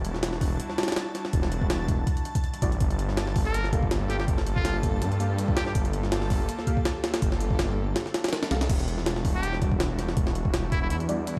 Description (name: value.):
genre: drum and bass, jungle.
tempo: 163 BPM.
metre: 4/4.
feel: swing 54% on 16ths.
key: unclear.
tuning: A4 = 440 Hz.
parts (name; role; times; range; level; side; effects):
airy breathy pad; sustained chords; 0.0-11.4 s; G3 to A4; -38 LUFS; equal; chorus.
detuned saw bass; bass; 0.0-11.4 s; E1 to G2; -31 LUFS; equal; tube saturation.
jungle sampler-style drum kit; drums; 0.0-11.4 s; crash cymbal, hi-hat, kick drum, snare drum; -29 LUFS; equal; none.
backwards swelling texture; texture; 0.0-8.7 s; A5; -44 LUFS; equal; built-in reverb.
deep mellow chord stab; stabs; 0.8-11.2 s; G3 to F5; -39 LUFS; equal; chorus, cassette tape, dub echo.
trumpet with metal mute; melody; 3.5-5.7, 9.3-11.0 s; E4 to Bb4; -38 LUFS; equal; dub echo.
room: digital ambience.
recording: played on a big sound system in a bare room, stone room reverb.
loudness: -27 LUFS.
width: mono.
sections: 0.0-8.7 A section; 8.7-11.4 A section.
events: drop 0.0-8.7, 8.7-11.4.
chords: 0.0 Em9; 2.8 Gm9; 8.7 Em9.